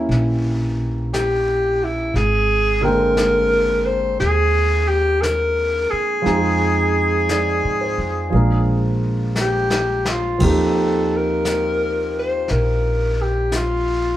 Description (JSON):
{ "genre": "jazz ballad", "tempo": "58 BPM", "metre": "4/4", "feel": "swing 68% on 8ths", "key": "unclear", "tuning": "A4 = 440 Hz", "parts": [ { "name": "mellow alto saxophone", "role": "melody", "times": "0.0-14.2 s", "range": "Fb4 to C5", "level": "-19 LUFS", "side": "left 1 dB", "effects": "none" }, { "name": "warm concert grand piano", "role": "accompaniment", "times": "0.0-14.2 s", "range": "D3 to G5", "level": "-23 LUFS", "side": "right 2 dB", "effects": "none" }, { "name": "upright bass", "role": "bass", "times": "0.0-14.2 s", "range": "Ab1 to Ab2", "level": "-22 LUFS", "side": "equal", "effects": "none" }, { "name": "vintage brush drum kit", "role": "drums", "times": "0.1-14.2 s", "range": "brushed snare drum, crash cymbal, hi-hat, kick drum, snare drum", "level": "-29 LUFS", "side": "left 2 dB", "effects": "none" } ], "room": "moderate large studio reverb, RT60 1.0 s", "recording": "band playing live in one room", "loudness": "-16 LUFS", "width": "side -13 dB against mid", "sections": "0.0-14.2 A section", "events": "drum fill 9.4-10.4", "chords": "0.0 Eb7b9; 2.1 Abmaj9#11; 6.3 Fm7; 8.3 Bb7; 10.4 Eb69", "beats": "0.10 1.12 | 2.14 3.16 4.19 5.22 | 6.25 7.28 8.32 9.36 | 10.41 11.46 12.49 13.53" }